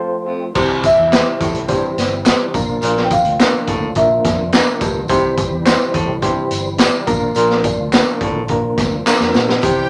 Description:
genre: uptempo 1960s-style soul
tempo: 106 BPM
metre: 4/4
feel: straight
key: unclear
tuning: A4 = 440 Hz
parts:
  - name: marimba with soft mallets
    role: melody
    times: 0.0-9.9 s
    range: Bb4 to G5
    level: -21 LUFS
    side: equal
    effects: none
  - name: reed electric piano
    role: accompaniment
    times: 0.0-9.9 s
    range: Bb3 to D5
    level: -23 LUFS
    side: equal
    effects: fast tremolo
  - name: percussive tonewheel organ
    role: sustained chords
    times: 0.0-9.9 s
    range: E3 to F4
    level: -29 LUFS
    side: equal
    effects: slow rotary speaker, overdrive, chorus vibrato
  - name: breathy baritone saxophone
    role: riff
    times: 0.3-9.9 s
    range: F2 to C3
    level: -23 LUFS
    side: equal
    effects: none
  - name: vintage muted fingered electric bass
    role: bass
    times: 0.6-9.9 s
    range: G1 to C3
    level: -28 LUFS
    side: equal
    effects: none
  - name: raw garage drum kit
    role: drums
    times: 0.6-9.8 s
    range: crash cymbal, hi-hat, kick drum, snare drum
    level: -20 LUFS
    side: equal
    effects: none
  - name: tambourine and handclaps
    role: percussion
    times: 0.6-9.8 s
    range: none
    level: -27 LUFS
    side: equal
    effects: none
  - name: rich studio violin section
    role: second line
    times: 9.6-9.9 s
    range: G4 to G5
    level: -25 LUFS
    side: equal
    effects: none
room: light reverb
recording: none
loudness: -16 LUFS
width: mono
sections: 0.6-9.9 A section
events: break 0.0-0.6; drum fill 9.1-9.6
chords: 0.0 F; 0.6 C; 2.5 Bb; 5.1 C; 7.1 Bb

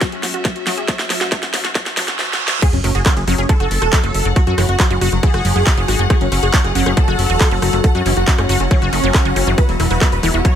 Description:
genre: psychedelic trance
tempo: 138 BPM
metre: 4/4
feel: straight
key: F# minor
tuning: A4 = 435 Hz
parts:
  - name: pulsing gated texture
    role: sustained chords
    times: 0.0-10.6 s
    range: F#3 to F#4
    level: -26 LUFS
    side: left 4 dB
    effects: chorus, built-in reverb, sidechain pumping
  - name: wide unison pluck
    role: riff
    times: 0.0-10.5 s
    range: E3 to G#4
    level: -24 LUFS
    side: right 1 dB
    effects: auto-pan, sidechain pumping, digital delay
  - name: drum and bass drum kit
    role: drums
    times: 0.0-10.5 s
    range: crash cymbal, handclaps, hi-hat, rim click, snare drum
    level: -21 LUFS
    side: equal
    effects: overdrive, high-pass filter on snare, high-pass filter on hats, high-pass filter on cymbals
  - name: electronic kick drum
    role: drums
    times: 0.0-10.5 s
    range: none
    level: -14 LUFS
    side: equal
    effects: overdrive
  - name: clear studio string section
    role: texture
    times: 0.0-10.6 s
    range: B3 to F#5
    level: -27 LUFS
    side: left 4 dB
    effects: sidechain pumping
  - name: reverse cymbal and sub drop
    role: sound effects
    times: 1.9-4.4 s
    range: none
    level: -24 LUFS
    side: right 3 dB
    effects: none
  - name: dense compressed supersaw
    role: melody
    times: 2.6-10.6 s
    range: F#3 to C#5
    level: -21 LUFS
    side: right 2 dB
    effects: phaser, sidechain pumping, tape echo
  - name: fat analog bass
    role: bass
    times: 2.7-10.4 s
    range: E1 to F#2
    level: -18 LUFS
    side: equal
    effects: none
room: light reverb, digital ambience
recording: high-pass filter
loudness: -13 LUFS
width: side -9 dB against mid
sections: 0.0-2.6 A section; 2.6-10.6 B section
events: build-up 0.0-2.6; drum fill 0.0-2.2, 2.2-2.6; filter sweep on synth arpeggio sound 0.0-2.6; filter sweep on synth texture 0.0-2.6; filter sweep 0.0-2.6; reverse cymbal 1.9-2.6; drop 2.6-10.6; impact 2.6-4.4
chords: 0.0 F#5; 9.6 E5

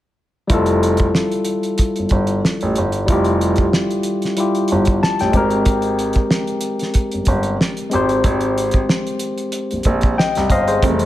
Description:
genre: R&B, neo-soul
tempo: 93 BPM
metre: 4/4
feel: swing 53% on 16ths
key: unclear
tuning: A4 = 440 Hz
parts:
  - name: barky tine electric piano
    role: accompaniment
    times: 0.5-11.1 s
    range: E3 to A5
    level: -19 LUFS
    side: left 2 dB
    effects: none
  - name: warm grand piano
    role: bass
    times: 0.5-11.1 s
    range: F1 to C2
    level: -20 LUFS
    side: right 1 dB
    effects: none
  - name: cloth-damped thuddy drum kit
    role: drums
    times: 0.5-11.1 s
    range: hi-hat, kick drum, snare drum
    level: -19 LUFS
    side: equal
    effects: none
  - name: semi-hollow electric guitar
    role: second line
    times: 10.8-10.9 s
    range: C4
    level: -23 LUFS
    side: right 10 dB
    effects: none
room: light reverb, studio reverb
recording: none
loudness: -15 LUFS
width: side -14 dB against mid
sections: 0.5-10.8 A section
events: tine electric piano fill 4.7-5.7, 9.9-10.8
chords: 0.5 Fmaj9; 5.3 Abmaj9

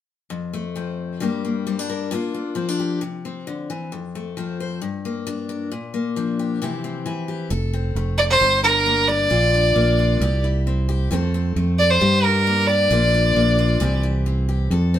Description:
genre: highlife guitar band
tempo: 133 BPM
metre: 4/4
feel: swing 54% on 16ths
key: F major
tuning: A4 = 441 Hz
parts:
  - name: picked steel-string acoustic guitar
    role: accompaniment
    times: 0.3-15.0 s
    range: F2 to C5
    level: -25 LUFS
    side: left 4 dB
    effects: none
  - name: fingered electric bass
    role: bass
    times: 7.5-15.0 s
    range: F1 to G2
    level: -20 LUFS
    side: right 1 dB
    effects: none
  - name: rich fiddle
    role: melody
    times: 8.2-14.0 s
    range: Bb4 to D5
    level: -17 LUFS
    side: right 1 dB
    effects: none
room: moderate studio reverb, RT60 0.7 s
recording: band playing live in one room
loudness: -18 LUFS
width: side -11 dB against mid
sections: 0.3-7.5 A section; 7.5-15.0 B section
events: none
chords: 0.3 F; 1.2 Gm; 2.1 Bb; 3.0 C; 3.9 F; 4.8 Gm; 5.7 Bb; 6.6 C; 7.5 F; 8.4 Gm; 9.3 Bb; 10.2 C; 11.1 F; 12.0 Gm; 12.9 Bb; 13.8 C

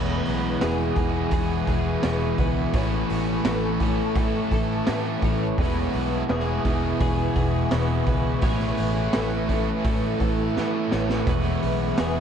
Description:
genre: rock, shoegaze and dream pop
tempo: 84 BPM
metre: 4/4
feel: straight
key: E major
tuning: A4 = 440 Hz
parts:
  - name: ethereal airy pad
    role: sustained chords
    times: 0.9-12.2 s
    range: B4 to C#6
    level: -33 LUFS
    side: right 1 dB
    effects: ensemble chorus, built-in reverb, phaser
  - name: twelve-string electric guitar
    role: arpeggios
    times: 0.0-12.2 s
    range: G#4 to C#5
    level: -32 LUFS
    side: left 3 dB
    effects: ensemble chorus, analog delay
  - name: overdriven electric guitar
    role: riff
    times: 0.0-12.2 s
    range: E2 to E4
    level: -28 LUFS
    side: right 6 dB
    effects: reverse reverb
  - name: thick fuzz guitar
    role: riff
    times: 0.0-12.2 s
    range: E2 to A3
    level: -28 LUFS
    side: left 6 dB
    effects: distortion, wide subtle chorus
  - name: vintage muted fingered electric bass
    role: bass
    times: 0.0-12.2 s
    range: E1 to A2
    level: -29 LUFS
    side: equal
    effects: none
  - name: raw garage drum kit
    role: drums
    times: 0.3-12.2 s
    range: hi-hat, kick drum, snare drum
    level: -27 LUFS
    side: equal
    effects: none
room: wet cathedral reverb, RT60 4.3 s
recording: dreamy mix soaked in reverb, cassette tape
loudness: -21 LUFS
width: side -8 dB against mid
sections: 0.0-12.2 A section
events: drum fill 10.6-11.3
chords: 0.0 E6; 2.8 Aadd9; 5.6 E6; 8.4 Aadd9; 11.3 E6

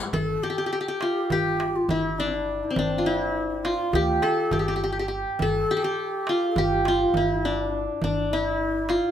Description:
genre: Turkish makam ensemble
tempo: 205 BPM (eighths)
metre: 9/8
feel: straight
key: G makam huseyni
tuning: A4 = 439 Hz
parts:
  - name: qanun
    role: melody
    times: 0.1-9.1 s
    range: C4 to A4-30c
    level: -24 LUFS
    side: equal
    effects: none
  - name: breathy bright low ney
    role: second line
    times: 0.1-9.1 s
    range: C4 to Bb4-30c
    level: -31 LUFS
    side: left 2 dB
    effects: none
  - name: upright bass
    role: bass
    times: 0.1-9.0 s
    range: G1 to D2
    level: -32 LUFS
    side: right 1 dB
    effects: none
  - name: darbuka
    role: percussion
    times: 0.1-9.0 s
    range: none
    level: -31 LUFS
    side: right 1 dB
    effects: none
room: moderate studio reverb, RT60 0.6 s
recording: none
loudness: -22 LUFS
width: side -10 dB against mid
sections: 0.1-9.1 A section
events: none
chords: none

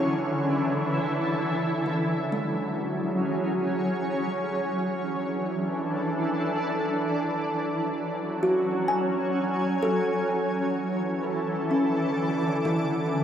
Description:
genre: ambient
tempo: 64 BPM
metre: 3/4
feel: straight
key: unclear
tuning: A4 = 441 Hz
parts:
  - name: shimmering ambient pad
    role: sustained chords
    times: 0.0-13.2 s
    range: D3 to D6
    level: -25 LUFS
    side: equal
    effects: chorus, built-in reverb
  - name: kalimba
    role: arpeggios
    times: 0.0-13.2 s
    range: E3 to G#5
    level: -29 LUFS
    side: equal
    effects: diffuse ambient delay
room: wet cathedral reverb, RT60 5.9 s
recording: none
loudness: -24 LUFS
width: side -9 dB against mid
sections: 0.0-1.9 A section; 1.9-13.2 B section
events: none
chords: 0.0 Dsus2; 1.9 F#sus2; 4.7 Dsus2; 7.5 F#madd9; 10.3 Dsus2

